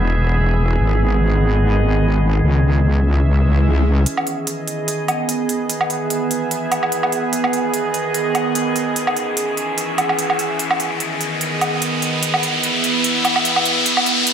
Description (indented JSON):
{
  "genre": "heavy wobble dubstep",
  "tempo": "147 BPM",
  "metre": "4/4",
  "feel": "swing 55% on 16ths, half-time",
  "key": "G# minor",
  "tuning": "A4 = 440 Hz",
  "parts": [
    { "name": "evolving wavetable pad", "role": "sustained chords", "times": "0.0-14.3 s", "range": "D#3 to E5", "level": "-20 LUFS", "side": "right 2 dB", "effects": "chorus, built-in reverb" },
    { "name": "wobble bass", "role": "bass", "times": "0.0-4.0 s", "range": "E1 to C#2", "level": "-15 LUFS", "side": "equal", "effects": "chorus, overdrive" },
    { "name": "swell and riser", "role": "sound effects", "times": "3.4-14.3 s", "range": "none", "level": "-22 LUFS", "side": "left 1 dB", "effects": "none" },
    { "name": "electronic hi-hat and woodblock", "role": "drums", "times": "4.1-14.3 s", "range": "none", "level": "-21 LUFS", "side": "right 1 dB", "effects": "overdrive" }
  ],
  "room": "light reverb",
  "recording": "high-pass filter",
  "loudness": "-16 LUFS",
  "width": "side -8 dB against mid",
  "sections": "0.0-4.1 A section; 4.1-14.3 B section",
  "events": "swell 3.4-4.1; build-up 4.1-14.3; riser 4.1-14.3; filter sweep 4.1-14.3",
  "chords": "0.0 E; 0.8 G#m; 2.4 C#m; 4.1 G#m; 5.7 E; 7.3 G#m; 9.0 C#m; 10.6 G#m; 12.2 E"
}